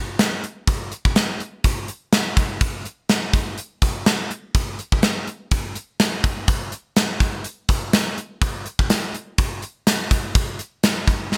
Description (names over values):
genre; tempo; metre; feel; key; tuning
pop; 124 BPM; 4/4; swing 55% on 16ths; none; none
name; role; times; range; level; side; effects
gated 80s drum kit; drums; 0.2-11.4 s; hi-hat, kick drum, snare drum, tambourine; -21 LUFS; equal; gated reverb
room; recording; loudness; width
light reverb; bright 1980s-style digital production; -22 LUFS; mono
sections
0.0-11.4 A section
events
none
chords
none